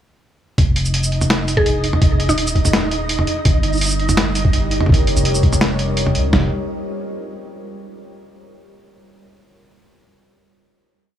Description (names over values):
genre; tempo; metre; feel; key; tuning
half-time drum and bass; 167 BPM; 4/4; half-time; unclear; A4 = 442 Hz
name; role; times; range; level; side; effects
long sustained 808-style bass; bass; 0.6-6.5 s; Eb1 to Db2; -20 LUFS; equal; none
boom bap sampler-style drum kit; drums; 0.6-6.4 s; kick drum, snare drum, toms; -16 LUFS; equal; none
boom bap sampler-style drum kit; drums; 0.6-6.2 s; hi-hat, shaker, snare drum, toms; -20 LUFS; equal; none
flickering grainy texture; texture; 0.9-6.3 s; Eb4 to Eb5; -25 LUFS; right 2 dB; built-in reverb
mallet-like synth pluck; melody; 1.6-2.8 s; Eb4 to Ab4; -23 LUFS; right 1 dB; chorus, tape echo
deep dark ambient pad; sustained chords; 4.3-7.7 s; G3 to Db5; -25 LUFS; left 1 dB; chorus, built-in reverb, sidechain pumping
room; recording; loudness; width
little or no reverb; small room reverb; -15 LUFS; side -10 dB against mid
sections
0.6-6.3 drop; 6.3-7.8 final chord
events
drop 0.6-6.3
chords
0.6 Ebsus2; 3.5 Gdim; 6.3 Fm